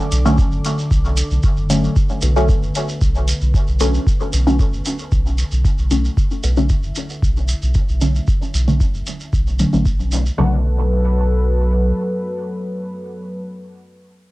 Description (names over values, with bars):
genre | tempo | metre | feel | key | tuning
dub techno | 114 BPM | 4/4 | straight | B minor | A4 = 440 Hz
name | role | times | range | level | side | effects
dark analog pad | sustained chords | 0.0-13.4 s | D3 to D6 | -26 LUFS | equal | chorus, sidechain pumping, cassette tape
soft dub sub bass | bass | 0.1-11.9 s | F#1 to B1 | -18 LUFS | equal | tube saturation, sidechain pumping
electronic hi-hat | drums | 0.1-10.2 s | none | -30 LUFS | left 1 dB | low-pass filter on hats, low-pass filter on room
shekere | percussion | 0.1-10.4 s | none | -30 LUFS | right 3 dB | none
filtered dub chord stab | stabs | 0.3-13.4 s | C#3 to C#4 | -21 LUFS | equal | phaser, sidechain pumping, cassette tape, dub echo
electronic kick drum | drums | 0.4-10.0 s | none | -18 LUFS | equal | none
filtered dub chord stab | riff | 2.2-13.4 s | A4 to F#5 | -32 LUFS | left 1 dB | phaser, analog chorus, sidechain pumping, cassette tape, dub echo
room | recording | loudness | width
light reverb | home recording on cassette | -15 LUFS | side -19 dB against mid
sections
0.0-10.4 A section; 10.4-14.3 B section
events
filter sweep on synth stab 0.0-10.4; filter sweep on analog synth pad 0.0-10.4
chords
0.0 Bm7